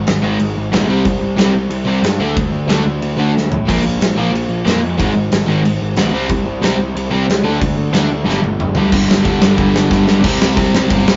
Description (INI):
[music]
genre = punk rock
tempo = 183 BPM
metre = 4/4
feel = straight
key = unclear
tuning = A4 = 440 Hz
[part]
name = crunchy overdriven guitar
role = riff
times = 0.0-10.2 s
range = G2 to D4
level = -25 LUFS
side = equal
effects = none
[part]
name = fuzz picked electric bass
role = bass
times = 0.0-11.2 s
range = G1 to A2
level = -22 LUFS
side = equal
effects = overdrive
[part]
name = big rock drum kit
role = drums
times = 0.1-11.1 s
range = crash cymbal, kick drum, ride cymbal, snare drum, toms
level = -20 LUFS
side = equal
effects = none
[part]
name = cranked stack guitar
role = riff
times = 0.2-11.2 s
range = G2 to D4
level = -22 LUFS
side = equal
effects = overdrive
[part]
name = sludgy distorted guitar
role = riff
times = 0.2-11.2 s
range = G2 to D4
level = -20 LUFS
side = equal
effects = overdrive
[sound]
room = moderate small room reverb, RT60 0.5 s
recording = rough rehearsal-room recording, nothing above 7.6 kHz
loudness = -15 LUFS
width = mono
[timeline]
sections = 0.0-8.9 A section; 8.9-10.2 B section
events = half time 0.0-8.9; drum fill 3.3-3.7, 8.3-8.9, 9.9-10.2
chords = 0.0 Ab5; 0.9 C5; 2.2 D5; 3.7 Bb5; 5.0 Ab5; 6.1 C5; 7.4 D5; 8.3 G5; 10.2 C5